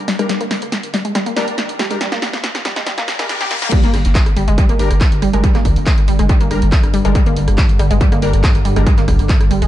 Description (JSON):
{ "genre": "driving peak-time techno", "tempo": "140 BPM", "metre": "4/4", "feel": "straight", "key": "G phrygian", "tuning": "A4 = 440 Hz", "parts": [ { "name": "riser, reverse cymbal and impact", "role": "sound effects", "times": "1.8-5.4 s", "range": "none", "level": "-29 LUFS", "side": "left 2 dB", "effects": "none" }, { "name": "wide unison pluck", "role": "riff", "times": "0.1-9.7 s", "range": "G3 to G4", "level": "-21 LUFS", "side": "moving between left 4 dB and right 7 dB", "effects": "auto-pan, sidechain pumping, dub echo" }, { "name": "punchy analog drum machine", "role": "drums", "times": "0.1-9.7 s", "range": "crash cymbal, handclaps, hi-hat, rim click, snare drum", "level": "-22 LUFS", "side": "equal", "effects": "sidechain pumping on hats, sidechain pumping on cymbals, dub echo" }, { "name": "rave stab", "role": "stabs", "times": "0.2-8.9 s", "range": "G3 to Bb4", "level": "-25 LUFS", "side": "left 2 dB", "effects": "chorus, built-in reverb, sidechain pumping, tape echo" }, { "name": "analog drone", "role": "drone", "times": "5.3-9.7 s", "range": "G2 to D3", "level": "-22 LUFS", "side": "equal", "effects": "chorus, sidechain pumping" }, { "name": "electronic kick drum", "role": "drums", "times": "3.7-9.4 s", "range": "none", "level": "-14 LUFS", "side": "equal", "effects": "overdrive" }, { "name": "saturated sub bass", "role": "bass", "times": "3.8-9.7 s", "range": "G1", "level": "-16 LUFS", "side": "equal", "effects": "overdrive, sidechain pumping, low-pass filter" } ], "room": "light reverb", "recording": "echo-heavy mix, high-pass filter, nothing above 10.9 kHz", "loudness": "-12 LUFS", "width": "side -13 dB against mid", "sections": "0.0-3.7 A section; 3.7-9.7 B section", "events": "build-up 0.0-3.7; drum fill 0.0-3.7; filter sweep on synth arpeggio sound 0.0-3.7; filter sweep 0.0-3.7; riser 1.8-3.7; reverse cymbal 2.9-3.7; drop 3.7-9.7; impact 3.7-5.4", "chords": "0.0 Gm", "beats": "| 0.29 0.72 1.15 1.58 | 2.01 2.44 2.87 3.29 | 3.72 4.15 4.58 5.01 | 5.44 5.87 6.29 6.72 | 7.15 7.58 8.01 8.44 | 8.87 9.29" }